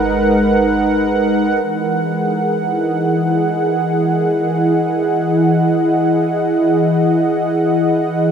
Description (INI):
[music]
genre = ambient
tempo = free time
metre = none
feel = none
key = E lydian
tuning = A4 = 440 Hz
[part]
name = warm analog pad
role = sustained chords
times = 0.0-8.3 s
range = E3 to F#5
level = -13 LUFS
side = equal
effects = chorus
[part]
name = warm sub bass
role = bass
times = 0.0-1.6 s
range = G#1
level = -30 LUFS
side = equal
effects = none
[sound]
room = wet huge ambient reverb, RT60 8.5 s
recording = dark, warm production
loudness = -13 LUFS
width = side -7 dB against mid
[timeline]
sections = 0.0-1.6 A section; 1.6-8.3 B section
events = none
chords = 0.0 G#m7; 1.6 Emaj7